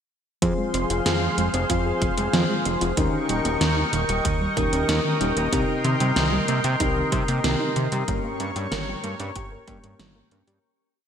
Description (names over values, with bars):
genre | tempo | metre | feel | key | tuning
synthwave | 94 BPM | 4/4 | straight | F minor | A4 = 440 Hz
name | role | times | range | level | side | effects
lush unison pad | sustained chords | 0.4-10.6 s | Ab4 to Db6 | -26 LUFS | equal | chorus, sidechain pumping
soft round pluck | arpeggios | 0.4-10.6 s | Eb3 to Bb4 | -29 LUFS | right 4 dB | chorus, ping-pong delay
mellow FM electric piano | stabs | 0.4-10.6 s | G2 to C5 | -29 LUFS | left 2 dB | chorus, ping-pong delay
fat analog bass | bass | 0.4-10.6 s | Eb1 to C3 | -26 LUFS | equal | sidechain pumping
electronic kick drum | drums | 0.4-9.8 s | none | -28 LUFS | equal | small room ambience
pop drum kit | drums | 0.4-10.6 s | hi-hat, snare drum | -28 LUFS | equal | small room ambience, gated reverb
room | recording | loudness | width
moderate lush hall reverb, RT60 2.5 s | bright 1980s-style digital production | -21 LUFS | side -8 dB against mid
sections
0.4-10.6 verse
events
fade-out 7.2-10.6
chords
0.4 Fm; 3.0 Eb7; 5.5 Cm7; 8.1 Gdim